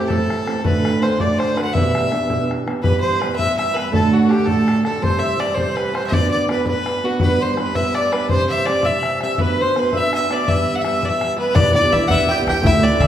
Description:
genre	celtic folk, Celtic jig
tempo	110 BPM (dotted quarters)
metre	6/8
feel	straight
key	E minor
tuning	A4 = 440 Hz
part	rich fiddle	melody	0.0-13.1 s	F#4 to G5	-21 LUFS	left 1 dB	none
part	accordion	second line	0.0-13.1 s	F#4 to G5	-24 LUFS	left 2 dB	none
part	fingerpicked old ladder-braced acoustic guitar	accompaniment	0.0-13.1 s	D2 to B4	-20 LUFS	right 3 dB	none
part	bodhran	percussion	0.1-13.1 s	none	-23 LUFS	left 2 dB	none
part	bluegrass banjo	second line	11.4-13.1 s	B3 to G4	-25 LUFS	right 2 dB	none
part	upright bass	bass	11.6-13.1 s	D2 to E3	-20 LUFS	left 1 dB	none
room	wet recital hall reverb, RT60 1.7 s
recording	recorded in a church or concert hall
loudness	-16 LUFS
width	side -10 dB against mid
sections	0.0-2.8 A section; 2.8-11.6 B section; 11.6-13.1 C section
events	none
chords	0.0 Am; 0.6 D; 1.7 Em7; 2.8 Em; 3.9 D; 5.0 C; 6.1 Bm; 7.2 G; 8.3 C; 9.4 Bm; 10.5 Em; 11.6 Em7

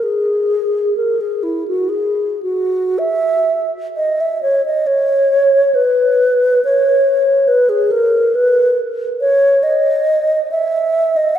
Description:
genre	classical, free, expressive piece for unaccompanied alto flute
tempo	52-72 BPM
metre	3/4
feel	rubato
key	G# minor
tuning	A4 = 438 Hz
part	mellow hollow alto flute	solo	0.0-11.4 s	E4 to F#5	-13 LUFS	equal	none
room	wet church reverb, RT60 3.2 s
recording	heard from further back in the room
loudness	-13 LUFS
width	side -10 dB against mid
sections	0.0-11.4 A section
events	none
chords	none

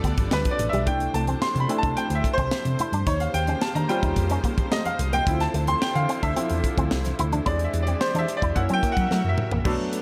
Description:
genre	polished 1980s jazz-funk pop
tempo	109 BPM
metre	4/4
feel	straight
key	unclear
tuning	A4 = 441 Hz
part	bright baby grand piano	accompaniment	0.0-10.0 s	B2 to C6	-28 LUFS	equal	lush chorus
part	clear studio string section	sustained chords	0.0-10.0 s	C3 to E5	-36 LUFS	equal	none
part	electric guitar with an envelope filter	riff	0.0-9.6 s	G3 to E4	-33 LUFS	equal	subtle chorus
part	hollow-body short-scale fingered electric bass	bass	0.0-9.7 s	G1 to F#3	-28 LUFS	equal	none
part	tight funk drum kit	drums	0.0-10.0 s	crash cymbal, hi-hat, kick drum, snare drum, toms	-30 LUFS	equal	none
part	congas	percussion	0.2-9.9 s	none	-41 LUFS	equal	none
room	light reverb, studio reverb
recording	none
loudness	-24 LUFS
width	mono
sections	0.0-9.7 A section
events	grand piano solo 0.0-9.7; drum fill 9.1-9.7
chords	0.0 G13; 0.9 C6; 3.1 D#13; 5.3 Dm9; 7.5 E7alt; 8.6 F#7

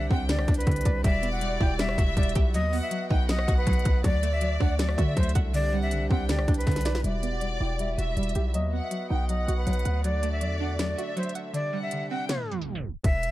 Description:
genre	hip hop, trap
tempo	160 BPM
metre	4/4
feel	half-time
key	E minor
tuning	A4 = 440 Hz
part	breathy bright jazz flute	melody	0.0-13.3 s	B4 to G5	-32 LUFS	equal	low-pass filter, digital delay
part	warm studio violin section	second line	0.0-12.3 s	D5 to G5	-35 LUFS	equal	digital delay
part	string-like resonator pluck	accompaniment	0.0-13.0 s	D3 to F#5	-33 LUFS	right 1 dB	chorus, low-pass filter
part	pedal harmonium	sustained chords	0.0-13.0 s	C3 to D#5	-38 LUFS	left 1 dB	low-pass filter
part	hard-hitting 808-style bass	bass	0.0-13.3 s	E1 to D3	-27 LUFS	equal	none
part	trap drum kit	drums	0.1-13.3 s	hi-hat, kick drum, rim click, snare drum	-26 LUFS	equal	none
room	small room ambience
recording	dark, warm production, tape stop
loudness	-24 LUFS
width	side -16 dB against mid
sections	0.0-7.0 A section; 7.0-13.0 B section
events	drum fill 6.7-7.0; filter sweep 7.0-13.0; break 11.5-13.0; tape stop 12.3-13.0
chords	0.0 Csus2; 1.0 Emadd9; 2.5 B; 4.0 D; 5.5 Csus2; 7.0 Emadd9; 8.5 B; 10.0 D; 11.5 Csus2

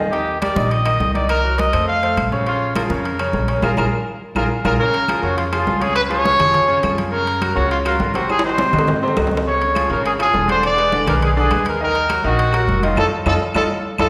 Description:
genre	latin, salsa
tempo	206 BPM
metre	4/4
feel	straight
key	Bb minor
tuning	A4 = 440 Hz
part	bright concert grand piano	accompaniment	0.0-14.1 s	C3 to Eb5	-24 LUFS	equal	none
part	upright bass	bass	0.0-14.1 s	E1 to Ab2	-26 LUFS	equal	none
part	warm trumpet	melody	0.1-14.1 s	F4 to F5	-21 LUFS	equal	none
part	congas	percussion	0.1-14.1 s	none	-28 LUFS	equal	none
part	timbales	percussion	0.1-14.1 s	none	-30 LUFS	equal	none
part	claves	percussion	0.4-14.1 s	none	-36 LUFS	equal	none
room	wet recital hall reverb, RT60 1.4 s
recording	recorded in a church or concert hall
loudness	-18 LUFS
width	mono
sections	0.0-4.8 A section; 4.8-14.1 B section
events	band accent 3.6-4.8, 13.0-14.1; drum fill 4.2-4.8, 8.3-9.5, 13.6-14.1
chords	0.1 Ebmaj7; 1.3 Cm7b5; 1.9 F; 2.5 Bbm7; 6.0 Db; 7.1 Gb; 8.3 Ab7; 9.5 Db; 10.6 E7; 11.8 Ebm; 13.0 F7

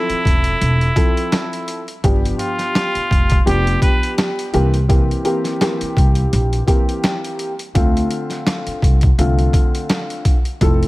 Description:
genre	hip hop, boom-bap hip-hop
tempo	84 BPM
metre	4/4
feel	swing 55% on 16ths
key	unclear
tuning	A4 = 441 Hz
part	trumpet with straight mute	melody	0.0-4.1 s	E4 to B4	-22 LUFS	equal	high-pass filter, low-pass filter, ping-pong delay
part	dark upright piano	accompaniment	0.0-10.9 s	D3 to A4	-21 LUFS	left 1 dB	high-pass filter, low-pass filter
part	upright bass	bass	0.1-10.9 s	E1 to D2	-18 LUFS	equal	none
part	boom bap sampler-style drum kit	drums	0.1-10.9 s	hi-hat, kick drum, snare drum	-17 LUFS	equal	none
room	small room ambience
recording	vinyl crackle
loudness	-14 LUFS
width	side -19 dB against mid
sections	0.0-10.9 A section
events	none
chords	0.0 Fmaj7; 2.0 G7; 4.5 C7; 7.8 Dm7

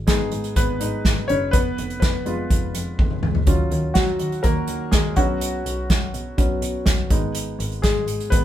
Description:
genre	piano-driven pop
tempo	124 BPM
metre	4/4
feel	straight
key	unclear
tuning	A4 = 441 Hz
part	clear double bass	bass	0.0-8.4 s	F1 to Eb3	-28 LUFS	equal	none
part	clear concert grand piano	accompaniment	0.1-8.4 s	Gb3 to Db5	-24 LUFS	left 1 dB	none
part	unplugged drum kit	drums	0.1-8.4 s	hi-hat, kick drum, snare drum, toms	-20 LUFS	equal	none
room	light reverb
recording	band playing live in one room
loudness	-19 LUFS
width	side -12 dB against mid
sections	0.0-8.4 A section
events	grand piano solo 0.0-8.4; drum fill 3.0-3.5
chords	0.0 Abm; 1.5 Fdim; 3.5 Ebm7; 5.2 Bsus2; 7.1 Abm

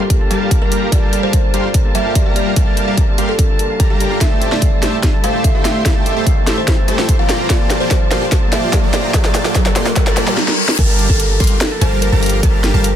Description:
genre	future bass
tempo	146 BPM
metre	4/4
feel	half-time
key	G dorian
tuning	A4 = 440 Hz
part	kalimba	melody	0.0-12.5 s	G4 to F5	-22 LUFS	equal	vintage 12-bit sampler grit, sidechain pumping, ping-pong delay
part	muted studio string section	sustained chords	0.0-13.0 s	G3 to A5	-27 LUFS	left 1 dB	sidechain pumping, low-pass filter
part	concert harp	arpeggios	0.0-13.0 s	E4 to F5	-28 LUFS	right 2 dB	none
part	dense compressed supersaw	riff	0.0-12.9 s	G3 to C6	-20 LUFS	equal	sidechain pumping, low-pass filter
part	riser, reverse cymbal and downlifter	sound effects	0.1-13.0 s	none	-24 LUFS	equal	none
part	electronic kick drum	drums	0.1-12.5 s	none	-15 LUFS	equal	studio ambience
part	trap drum kit	drums	0.1-12.9 s	crash cymbal, hi-hat, snare drum	-20 LUFS	equal	overdrive, studio ambience
part	wide unison pluck	arpeggios	10.8-12.9 s	A5 to C6	-31 LUFS	right 2 dB	lush chorus, sidechain pumping, ping-pong delay
part	warm 808-style bass	bass	10.8-13.0 s	G1	-16 LUFS	equal	sidechain pumping
room	little or no reverb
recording	dense, heavily limited modern master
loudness	-12 LUFS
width	side -10 dB against mid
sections	0.0-10.8 A section; 10.8-13.0 B section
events	build-up 0.0-10.8; riser 0.1-10.4; drum fill 4.2-10.4, 10.4-10.8; reverse cymbal 10.0-10.8; drop 10.8-13.0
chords	0.0 Gm9; 4.2 Am7; 7.3 Gm9

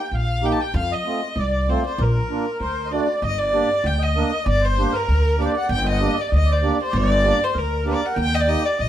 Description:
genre	klezmer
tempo	97 BPM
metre	2/4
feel	straight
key	G harmonic minor from 3.2 s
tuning	A4 = 440 Hz
part	warm violin	melody	0.0-8.9 s	Bb4 to A5	-23 LUFS	left 1 dB	plate reverb
part	accordion	second line	0.0-8.9 s	Bb4 to G5	-28 LUFS	right 2 dB	light tremolo tuning
part	upright bass	bass	0.1-8.9 s	G1 to F2	-21 LUFS	equal	none
part	mellow accordion	accompaniment	0.4-8.6 s	A3 to Bb4	-25 LUFS	right 4 dB	none
room	wet small room reverb, RT60 0.5 s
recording	heard from further back in the room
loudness	-18 LUFS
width	side -11 dB against mid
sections	0.0-3.2 A section; 3.2-8.9 B section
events	none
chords	0.0 Eb; 0.7 F; 2.0 Bb; 2.6 D7; 3.2 Gm; 8.2 Eb

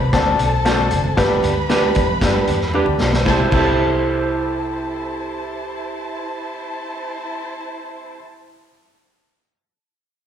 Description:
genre	uptempo 1960s-style soul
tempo	115 BPM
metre	4/4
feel	straight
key	C major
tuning	A4 = 440 Hz
part	warm studio violin section	second line	0.0-8.2 s	E4 to B5	-26 LUFS	right 1 dB	plate reverb, slapback echo
part	vintage muted picked electric bass	bass	0.0-8.2 s	F#1 to G2	-22 LUFS	equal	none
part	warm upright piano	accompaniment	0.1-8.2 s	B3 to B4	-22 LUFS	left 2 dB	plate reverb, slapback echo
part	vintage drum kit	drums	0.1-3.7 s	crash cymbal, hi-hat, kick drum, snare drum	-21 LUFS	equal	none
part	congas	percussion	0.1-3.7 s	none	-30 LUFS	right 2 dB	none
part	electric guitar at the edge of break-up	stabs	0.7-8.2 s	D4 to C5	-24 LUFS	right 7 dB	vibrato effect, plate reverb
room	light reverb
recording	live gig heard through the venue's PA, recital hall reverb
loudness	-17 LUFS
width	side -9 dB against mid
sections	0.0-3.3 A section; 3.3-7.4 B section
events	drum fill 2.7-3.3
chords	0.0 D7; 1.2 G; 3.3 C6

